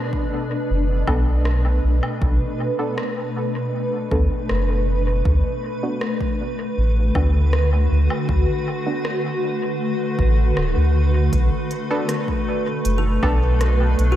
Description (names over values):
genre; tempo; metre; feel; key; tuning
ambient dub; 79 BPM; 4/4; straight; B minor; A4 = 440 Hz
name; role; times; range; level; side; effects
granular cloud pad; sustained chords; 0.0-14.2 s; B2 to B4; -23 LUFS; equal; built-in reverb
electronic kick drum; drums; 0.1-13.4 s; none; -24 LUFS; equal; overdrive
soft dub sub bass; bass; 0.7-14.2 s; D1 to D2; -18 LUFS; equal; tube saturation
filtered dub chord stab; stabs; 1.1-13.4 s; B3 to A4; -30 LUFS; right 1 dB; chorus, cassette tape, dub echo
organic electronic drum kit; drums; 1.1-14.1 s; hi-hat, rim click, woodblock; -32 LUFS; equal; dub echo
kalimba; arpeggios; 13.0-14.2 s; F#4 to A4; -30 LUFS; left 5 dB; diffuse ambient delay
room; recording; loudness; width
light reverb; none; -18 LUFS; side -12 dB against mid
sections
0.0-14.2 A section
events
none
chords
0.0 Bm7; 5.3 D6; 11.3 Bm7